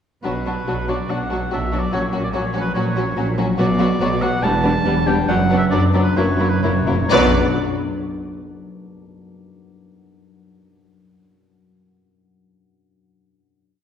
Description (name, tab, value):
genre	classical, dramatic, fast romantic movement for symphony orchestra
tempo	123-146 BPM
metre	4/4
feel	rubato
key	B minor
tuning	A4 = 439 Hz
part	warm symphonic violin section	melody	0.2-7.4 s	D4 to D5	-26 LUFS	left 2 dB	none
part	clear oboe	second line	0.2-7.3 s	B4 to A5	-24 LUFS	equal	none
part	warm symphonic violin section	second line	0.2-7.4 s	A#3 to D4	-27 LUFS	left 2 dB	none
part	warm symphonic viola section	accompaniment	0.2-7.4 s	F#3 to G3	-25 LUFS	right 1 dB	none
part	concert harp	arpeggios	0.2-7.4 s	E2 to D5	-24 LUFS	left 4 dB	none
part	clear symphonic double bass section	bass	0.2-7.4 s	E1 to B1	-25 LUFS	right 2 dB	none
part	rich symphonic cello section	bass	0.2-7.4 s	E2 to B2	-23 LUFS	right 3 dB	none
part	timpani	percussion	6.2-7.3 s	F#2 to B2	-27 LUFS	equal	none
room	wet concert hall reverb, RT60 1.8 s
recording	heard from further back in the room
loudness	-16 LUFS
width	side -8 dB against mid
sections	0.2-7.1 A section; 7.1-8.9 final chord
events	slowing down 2.8-7.1; timpani fill 6.2-7.1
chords	0.2 Bm; 1.9 F#/A#; 3.6 Bm; 4.4 Em7; 5.3 Bm/F#; 6.2 F#7; 7.1 Bm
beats	| 0.24 0.67 1.10 1.52 | 1.93 2.35 2.76 3.17 | 3.58 4.00 4.43 4.86 | 5.29 5.72 6.17 6.63 | 7.11